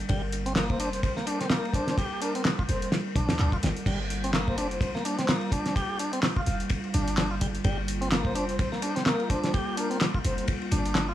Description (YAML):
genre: breakbeat, breaks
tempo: 127 BPM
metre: 4/4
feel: swing 57% on 16ths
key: G minor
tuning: A4 = 440 Hz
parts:
  - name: warbly tape-like pad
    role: sustained chords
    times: 0.0-11.1 s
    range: G3 to Bb4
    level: -34 LUFS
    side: right 1 dB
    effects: chorus, built-in reverb, sidechain pumping
  - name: warm 808-style bass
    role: bass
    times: 0.0-11.1 s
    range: F1 to D2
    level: -30 LUFS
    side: equal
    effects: none
  - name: tonewheel organ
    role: riff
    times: 0.1-11.1 s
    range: G3 to G4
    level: -32 LUFS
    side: equal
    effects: overdrive, tube saturation, tape echo
  - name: damped 70s drum kit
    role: drums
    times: 0.1-11.1 s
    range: crash cymbal, kick drum, ride cymbal, snare drum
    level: -28 LUFS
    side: equal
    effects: none
  - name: punchy analog drum machine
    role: drums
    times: 0.1-11.1 s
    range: handclaps, hi-hat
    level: -35 LUFS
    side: equal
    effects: none
  - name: breathy flute-like synth lead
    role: melody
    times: 0.7-10.4 s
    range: Bb4 to F5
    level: -36 LUFS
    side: left 1 dB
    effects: chorus, small speaker sound, tape echo
room: little or no reverb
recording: dry, gritty hardware recording, small room ambience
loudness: -25 LUFS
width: side -12 dB against mid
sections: 0.0-3.9 A section; 3.9-11.1 A section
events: drop 0.0-3.9, 3.9-11.1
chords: 0.0 Gm7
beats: | 0.09 0.56 1.03 1.51 | 1.98 2.45 2.92 3.40 | 3.87 4.34 4.81 5.29 | 5.76 6.23 6.70 7.17 | 7.65 8.12 8.59 9.06 | 9.54 10.01 10.48 10.96